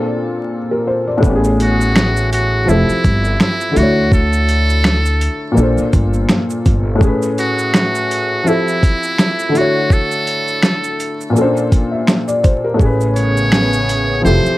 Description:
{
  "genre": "lo-fi hip hop",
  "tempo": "83 BPM",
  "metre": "4/4",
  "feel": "swing 56% on 16ths",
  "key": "A major",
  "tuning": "A4 = 440 Hz",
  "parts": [
    { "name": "felt-muted upright piano", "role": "accompaniment", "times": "0.0-14.6 s", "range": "A2 to E5", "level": "-17 LUFS", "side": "left 1 dB", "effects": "low-pass filter" },
    { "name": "upright bass", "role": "bass", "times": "1.2-7.0, 12.8-14.5 s", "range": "F1 to D2", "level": "-16 LUFS", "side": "equal", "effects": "none" },
    { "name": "dusty soul sampler-style drum kit", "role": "drums", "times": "1.2-14.6 s", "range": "finger snaps, hi-hat, kick drum, shaker, snare drum", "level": "-14 LUFS", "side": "equal", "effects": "overdrive" },
    { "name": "trumpet with metal mute", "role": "melody", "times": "1.6-14.6 s", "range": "E4 to C#5", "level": "-19 LUFS", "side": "right 1 dB", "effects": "low-pass filter" },
    { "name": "lush unison pad", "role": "sustained chords", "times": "13.2-14.6 s", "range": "C#3 to G#4", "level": "-22 LUFS", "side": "right 1 dB", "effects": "chorus, low-pass filter" }
  ],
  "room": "light reverb",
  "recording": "vinyl crackle",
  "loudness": "-12 LUFS",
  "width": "side -17 dB against mid",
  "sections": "0.0-1.2 A section; 1.2-14.6 B section",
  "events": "none",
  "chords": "0.0 Bbmaj9; 1.2 Amaj9; 2.7 Fmaj9; 3.8 Dmaj9; 5.6 Bbmaj9; 7.0 Amaj9; 8.5 Fmaj9; 9.5 Dmaj9; 11.3 Bbmaj9; 12.8 Amaj9"
}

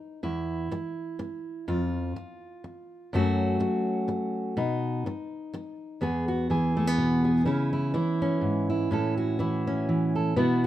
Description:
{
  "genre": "folk, solo fingerstyle acoustic guitar",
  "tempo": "124 BPM",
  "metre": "3/4",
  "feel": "swing 56% on 8ths",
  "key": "E major",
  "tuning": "A4 = 440 Hz",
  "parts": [
    { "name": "fingerpicked steel-string acoustic guitar", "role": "solo", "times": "0.0-10.7 s", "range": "E2 to A4", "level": "-25 LUFS", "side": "equal", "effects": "none" }
  ],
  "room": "light reverb",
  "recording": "minimal, uncompressed stereo recording",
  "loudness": "-25 LUFS",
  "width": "side -13 dB against mid",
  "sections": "0.0-6.0 A section; 6.0-10.7 B section",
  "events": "none",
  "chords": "0.2 E5; 1.7 N.C.; 3.1 F#m; 4.6 B; 6.0 E; 7.5 C#m; 8.9 A"
}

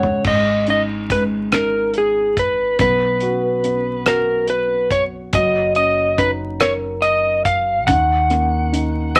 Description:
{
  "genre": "six-eight pop ballad",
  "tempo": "47 BPM (dotted quarters)",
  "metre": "6/8",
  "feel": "straight",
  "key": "unclear",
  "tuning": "A4 = 440 Hz",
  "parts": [
    { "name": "electric slide guitar", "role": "melody", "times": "0.0-9.2 s", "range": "G#4 to F#5", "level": "-19 LUFS", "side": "equal", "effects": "none" },
    { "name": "dark baby grand piano", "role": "accompaniment", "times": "0.0-9.2 s", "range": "G#2 to F#5", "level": "-26 LUFS", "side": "equal", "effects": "none" },
    { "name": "damped 70s drum kit", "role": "drums", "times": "0.0-9.2 s", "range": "crash cymbal, hi-hat, kick drum, rim click, toms", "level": "-23 LUFS", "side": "equal", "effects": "none" },
    { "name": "upright bass", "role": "bass", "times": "0.2-9.2 s", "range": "F#1 to D#2", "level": "-29 LUFS", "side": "equal", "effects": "none" }
  ],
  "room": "moderate club reverb, RT60 0.8 s",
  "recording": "vinyl crackle",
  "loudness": "-18 LUFS",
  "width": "mono",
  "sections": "0.2-9.2 A section",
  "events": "drum fill 0.0; grand piano fill 0.0",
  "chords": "0.2 G#5; 2.8 B5; 5.3 F#6; 7.9 D#m"
}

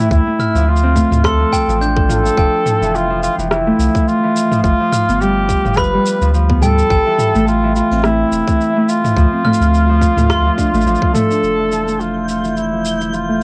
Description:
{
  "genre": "folktronica",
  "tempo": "106 BPM",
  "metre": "4/4",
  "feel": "swing 56% on 16ths",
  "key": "unclear",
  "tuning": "A4 = 440 Hz",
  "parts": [
    { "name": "warm flugelhorn", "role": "melody", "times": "0.0-13.4 s", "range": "E4 to B4", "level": "-20 LUFS", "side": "equal", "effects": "cassette tape, tape echo" },
    { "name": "Celtic harp", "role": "arpeggios", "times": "0.0-13.4 s", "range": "E3 to A4", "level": "-20 LUFS", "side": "equal", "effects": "low-pass filter, cassette tape, tape echo" },
    { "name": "round analog bass", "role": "bass", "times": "0.1-13.4 s", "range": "E1 to D2", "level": "-20 LUFS", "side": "equal", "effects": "none" },
    { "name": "electronic kick drum", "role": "drums", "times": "0.1-11.1 s", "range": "none", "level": "-20 LUFS", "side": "equal", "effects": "none" },
    { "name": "organic electronic drum kit", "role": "drums", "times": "0.1-13.3 s", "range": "rim click, shaker, toms", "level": "-24 LUFS", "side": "equal", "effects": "none" },
    { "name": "glockenspiel with hard plastic mallets", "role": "second line", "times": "0.4-10.6 s", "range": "G5 to G6", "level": "-26 LUFS", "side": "equal", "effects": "cassette tape, analog delay" },
    { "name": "twinkling granular texture", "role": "texture", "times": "12.0-13.4 s", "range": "G6", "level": "-32 LUFS", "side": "equal", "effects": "built-in reverb, cassette tape" }
  ],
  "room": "light reverb",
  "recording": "home recording on cassette",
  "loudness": "-15 LUFS",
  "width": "mono",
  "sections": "0.0-11.4 A section; 11.4-13.4 B section",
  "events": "none",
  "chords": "0.1 Dm7; 2.4 Fmaj7; 4.6 G7; 6.9 Am; 9.2 Dm7; 11.4 Fmaj7"
}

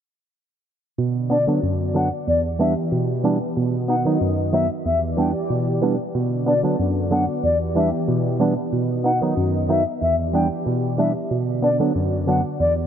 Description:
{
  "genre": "dancehall",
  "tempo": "93 BPM",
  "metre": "4/4",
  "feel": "straight",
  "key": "unclear",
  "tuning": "A4 = 440 Hz",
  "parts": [
    { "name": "percussive organ stab", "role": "accompaniment", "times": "1.0-12.9 s", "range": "E2 to D#4", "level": "-21 LUFS", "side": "right 2 dB", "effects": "chorus" },
    { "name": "lush unison pad", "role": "sustained chords", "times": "1.0-12.9 s", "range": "D3 to D#5", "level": "-26 LUFS", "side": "equal", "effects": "chorus" },
    { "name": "jazz flute", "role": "melody", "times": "1.3-12.7 s", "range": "D5 to G5", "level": "-24 LUFS", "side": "left 3 dB", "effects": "tape echo" }
  ],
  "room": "light reverb, studio reverb",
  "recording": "low-pass filter",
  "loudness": "-18 LUFS",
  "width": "side -9 dB against mid",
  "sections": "1.0-12.9 A section",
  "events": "filter sweep 1.0-12.9",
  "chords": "1.0 Bm; 2.3 Em7; 3.6 B; 4.9 Em7; 6.1 Bm; 7.4 Em7; 8.7 B; 10.0 Em7; 11.3 Bm"
}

